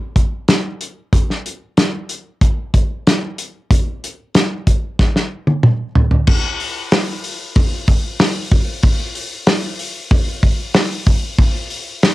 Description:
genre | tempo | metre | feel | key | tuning
rock | 94 BPM | 4/4 | straight | none | none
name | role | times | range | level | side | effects
loose indie drum kit | drums | 0.2-12.1 s | crash cymbal, hi-hat, kick drum, snare drum, toms | -14 LUFS | equal | none
room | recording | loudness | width
moderate booth ambience, RT60 0.2 s | home recording on cassette | -14 LUFS | side -18 dB against mid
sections
0.0-6.3 A section; 6.3-12.1 B section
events
drum fill 5.0-6.3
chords
none

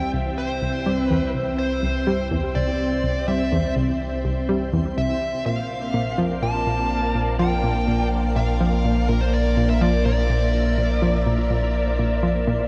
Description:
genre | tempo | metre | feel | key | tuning
ambient, sequencer-driven space music | 124 BPM | 4/4 | straight | unclear | A4 = 440 Hz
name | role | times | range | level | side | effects
dark smooth lead guitar | melody | 0.0-12.7 s | Bb4 to A5 | -29 LUFS | equal | overdrive, analog delay
string machine, full ensemble | sustained chords | 0.0-12.7 s | Bb3 to G5 | -28 LUFS | equal | ensemble chorus
warm sub bass | bass | 0.0-12.7 s | Bb1 to C2 | -28 LUFS | equal | none
twinkling granular texture | texture | 1.5-12.7 s | C5 | -42 LUFS | equal | none
analog pluck | riff | 0.1-12.6 s | C2 to G3 | -27 LUFS | equal | chorus, analog delay
room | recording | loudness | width
wet huge ambient reverb, RT60 8.1 s | dark, warm production | -22 LUFS | mono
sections
0.0-12.7 A section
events
fade-in on sub bass 0.0-12.7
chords
0.0 C; 5.5 Bb

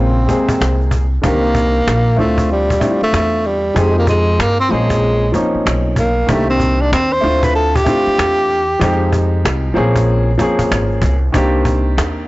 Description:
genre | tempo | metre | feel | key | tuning
hip hop, jazz-hop | 95 BPM | 4/4 | swing 63% on 16ths | unclear | A4 = 440 Hz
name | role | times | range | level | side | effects
breathy tenor saxophone | melody | 0.0-9.3 s | G3 to C5 | -16 LUFS | equal | none
warm upright piano | accompaniment | 0.0-12.3 s | C3 to C5 | -18 LUFS | left 1 dB | none
upright bass | bass | 0.0-12.3 s | Ab1 to G2 | -17 LUFS | equal | tube saturation
cajon | drums | 0.3-12.2 s | none | -20 LUFS | equal | none
room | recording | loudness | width
small room ambience | blown-out, overdriven recording, overdrive, nothing above 7.8 kHz | -12 LUFS | side -19 dB against mid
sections
0.0-1.2 A section; 1.2-12.3 B section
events
tenor saxophone solo 1.2-12.3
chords
0.0 Bbm9; 1.2 Cm9; 2.2 Dm9; 3.8 Fm9; 4.7 Bbm9; 6.3 Cm9; 7.2 Dm9; 8.8 Fm9; 9.8 Bbm9; 11.3 Cm9

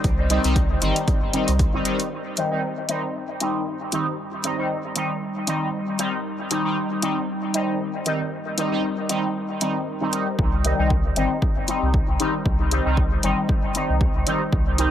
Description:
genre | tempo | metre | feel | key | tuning
dub techno | 116 BPM | 4/4 | swing 56% on 16ths | C minor | A4 = 440 Hz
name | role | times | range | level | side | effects
deep dark ambient pad | sustained chords | 0.0-14.9 s | G3 to Eb5 | -31 LUFS | left 2 dB | chorus, built-in reverb, sidechain pumping
warm sub bass | bass | 0.0-1.8, 10.4-14.9 s | G1 to C2 | -23 LUFS | equal | sidechain pumping
electronic hi-hat | drums | 0.0-14.9 s | none | -26 LUFS | left 1 dB | overdrive
electronic kick drum | drums | 0.0-1.7, 10.4-14.6 s | none | -22 LUFS | equal | overdrive
wind-like tuned noise texture | texture | 0.0-2.1 s | C5 | -38 LUFS | left 4 dB | none
resonant sweep polysynth | stabs | 0.3-14.9 s | Eb3 to Eb4 | -24 LUFS | equal | chorus, phaser, cassette tape, sidechain pumping, dub echo
room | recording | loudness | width
light reverb | echo-heavy mix | -20 LUFS | side -10 dB against mid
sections
0.0-2.1 A section; 2.1-10.4 B section; 10.4-14.9 A section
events
filter sweep on analog polysynth 2.1-10.4; filter sweep on ambient pad 2.1-10.4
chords
0.0 Cm

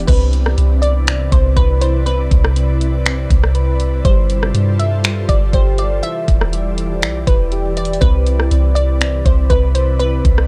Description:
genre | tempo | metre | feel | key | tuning
hip hop, atmospheric cloud-rap | 121 BPM | 4/4 | half-time | C major | A4 = 440 Hz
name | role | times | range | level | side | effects
glassy wavetable pluck | melody | 0.0-10.5 s | B4 to E5 | -25 LUFS | equal | chorus, tape echo
ethereal airy pad | sustained chords | 0.0-10.5 s | C3 to D5 | -26 LUFS | equal | ensemble chorus, built-in reverb, sidechain pumping
soft 808-style bass | bass | 0.0-10.5 s | E1 to G2 | -18 LUFS | equal | none
trap drum kit | drums | 0.0-10.5 s | crash cymbal, finger snaps, hi-hat, kick drum, rim click | -18 LUFS | equal | vintage 12-bit sampler grit
soft electric-piano-like synth keys | arpeggios | 0.1-10.5 s | E3 to B4 | -30 LUFS | equal | chorus, phaser, tape echo
room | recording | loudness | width
little or no reverb | dark, warm production | -15 LUFS | mono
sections
0.1-10.5 A section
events
none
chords
0.1 Cmaj9; 4.0 G9sus4; 6.0 Em7; 8.0 Cmaj9

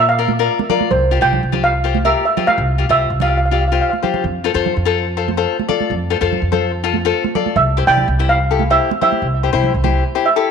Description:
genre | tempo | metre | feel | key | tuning
calypso | 144 BPM | 4/4 | straight | unclear | A4 = 440 Hz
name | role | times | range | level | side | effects
steel pan | melody | 0.0-4.0, 7.6-10.5 s | C5 to G5 | -16 LUFS | right 3 dB | tape echo
cavaquinho | accompaniment | 0.0-10.5 s | E4 to D5 | -18 LUFS | left 8 dB | none
upright bass | bass | 0.0-10.0 s | C2 to Bb2 | -19 LUFS | equal | none
congas | percussion | 0.3-9.9 s | none | -24 LUFS | right 10 dB | none
room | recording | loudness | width
moderate echo chamber reverb, RT60 1.6 s, studio reverb | 1960s-style stereo with parts hard left and right | -14 LUFS | side -6 dB against mid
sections
0.0-10.5 A section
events
drum fill 3.9-4.2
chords
0.0 Bb; 0.9 Csus4; 4.2 F; 7.6 C

